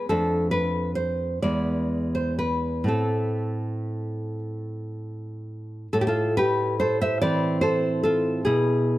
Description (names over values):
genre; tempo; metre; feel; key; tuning
romantic piece for solo classical guitar; 38-50 BPM (dotted quarters); 6/8; rubato; A minor; A4 = 437 Hz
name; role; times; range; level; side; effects
nylon-string guitar; solo; 0.0-9.0 s; E2 to E5; -23 LUFS; equal; none
room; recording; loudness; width
moderate recital hall reverb, RT60 1.4 s; none; -22 LUFS; side -16 dB against mid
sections
0.0-5.9 A section; 5.9-9.0 A section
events
none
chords
0.1 Dm/F; 1.4 E7; 2.9 Am; 8.5 E/B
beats
| 0.11 1.44 | 2.89 4.43 | 5.93 7.22 | 8.46